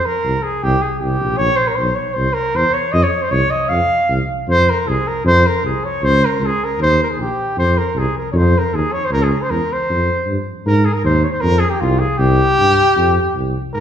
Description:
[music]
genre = balkan folk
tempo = 155 BPM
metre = 2/4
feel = straight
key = F minor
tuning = A4 = 440 Hz
[part]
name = dark cornet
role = melody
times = 0.0-13.8 s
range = F4 to F5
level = -16 LUFS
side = equal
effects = none
[part]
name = dark tuba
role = bass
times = 0.2-13.8 s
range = Bb1 to Ab2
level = -17 LUFS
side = equal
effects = none
[sound]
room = wet recital hall reverb, RT60 1.6 s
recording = recorded in a church or concert hall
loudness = -14 LUFS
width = side -9 dB against mid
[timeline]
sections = 0.0-4.5 A section; 4.5-10.6 B section; 10.6-13.8 C section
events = none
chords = 0.0 N.C.; 0.6 C5; 1.4 Bbmadd9; 2.2 C; 2.9 F5; 6.0 Bbm9/Db; 6.8 Eb; 7.6 F5; 9.1 Dbmmaj7; 9.9 F5; 10.6 Ab5; 11.4 F5; 12.2 C5; 13.0 F5

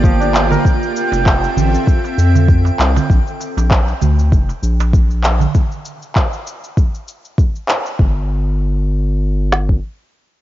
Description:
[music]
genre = organic downtempo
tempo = 98 BPM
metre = 4/4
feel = swing 55% on 16ths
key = unclear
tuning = A4 = 444 Hz
[part]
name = bowed-like drone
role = sustained chords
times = 0.0-3.1 s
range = Bb3 to E5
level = -22 LUFS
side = equal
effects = built-in reverb, sidechain pumping, cassette tape
[part]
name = kora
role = arpeggios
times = 0.0-1.9 s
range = F3 to Bb4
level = -23 LUFS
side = left 2 dB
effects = low-pass filter, cassette tape, analog delay
[part]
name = round analog bass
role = bass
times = 0.0-9.8 s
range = F1 to F2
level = -15 LUFS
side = equal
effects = none
[part]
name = electronic shaker and handclaps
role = drums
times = 0.0-8.0 s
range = none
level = -21 LUFS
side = equal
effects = overdrive, cassette tape
[part]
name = organic electronic drum kit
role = drums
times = 0.0-9.8 s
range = kick drum, snare drum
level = -13 LUFS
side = equal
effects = overdrive, cassette tape
[part]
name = drifting glass-harmonics texture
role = texture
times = 0.0-3.1 s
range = G5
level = -24 LUFS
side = right 6 dB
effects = chorus, built-in reverb, cassette tape
[part]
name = darbuka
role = percussion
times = 0.5-5.5 s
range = none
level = -22 LUFS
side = right 10 dB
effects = none
[sound]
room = light reverb, digital ambience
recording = home recording on cassette, nothing above 7.5 kHz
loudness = -13 LUFS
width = side -14 dB against mid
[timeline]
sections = 0.0-8.0 A section; 8.0-10.4 B section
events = filter sweep on analog synth bass 0.0-5.5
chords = 0.0 Gm7; 0.6 Fmaj7; 3.1 Bb; 5.5 N.C.

